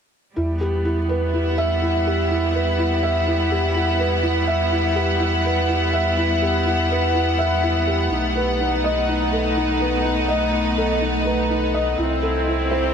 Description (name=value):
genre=electronica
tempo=124 BPM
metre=4/4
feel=straight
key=E harmonic minor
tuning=A4 = 442 Hz
part: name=clear studio string section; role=sustained chords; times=0.4-12.9 s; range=G3 to F#5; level=-22 LUFS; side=equal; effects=none
part: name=felt-muted upright piano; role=riff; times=0.4-12.9 s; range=D#4 to E5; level=-22 LUFS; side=equal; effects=ping-pong delay
part: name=warm sub bass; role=bass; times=0.4-12.9 s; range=B1 to E2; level=-24 LUFS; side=equal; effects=tube saturation
room=wet huge ambient reverb, RT60 7.5 s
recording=dreamy mix soaked in reverb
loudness=-18 LUFS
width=side -7 dB against mid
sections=0.4-12.9 A section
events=none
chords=0.4 Emadd9; 8.1 B7; 12.0 Am7/C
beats=| 0.37 0.85 1.34 1.82 | 2.31 2.79 3.27 3.76 | 4.24 4.72 5.21 5.69 | 6.18 6.66 7.14 7.63 | 8.11 8.60 9.08 9.56 | 10.05 10.53 11.02 11.50 | 11.98 12.47